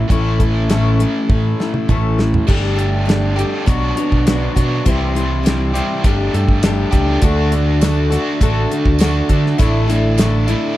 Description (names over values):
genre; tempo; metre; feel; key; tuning
folk rock and heartland rock; 101 BPM; 4/4; straight; D major; A4 = 440 Hz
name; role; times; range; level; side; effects
picked steel-string acoustic guitar; accompaniment; 0.0-10.8 s; A2 to C#5; -20 LUFS; left 4 dB; none
overdriven electric guitar; riff; 0.0-10.8 s; A2 to G4; -21 LUFS; right 2 dB; harmonic tremolo
fingered electric bass; bass; 0.0-10.5 s; G1 to D3; -18 LUFS; equal; none
damped 70s drum kit; drums; 0.1-10.6 s; crash cymbal, hi-hat, kick drum, snare drum, toms; -16 LUFS; equal; none
tonewheel organ; sustained chords; 6.9-10.8 s; G3 to C5; -28 LUFS; right 1 dB; none
dark concert grand piano; accompaniment; 7.2-10.8 s; E4 to D5; -30 LUFS; right 3 dB; none
tambourine; percussion; 7.8-10.3 s; none; -34 LUFS; right 11 dB; none
room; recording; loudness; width
light reverb; dark, warm production; -13 LUFS; side -15 dB against mid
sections
0.0-2.5 A section; 2.5-10.8 B section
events
drum fill 1.3-2.5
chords
0.0 A; 2.5 Gsus2; 3.7 Bmadd9; 4.9 C; 6.0 Gsus2; 7.2 D; 9.6 Asus4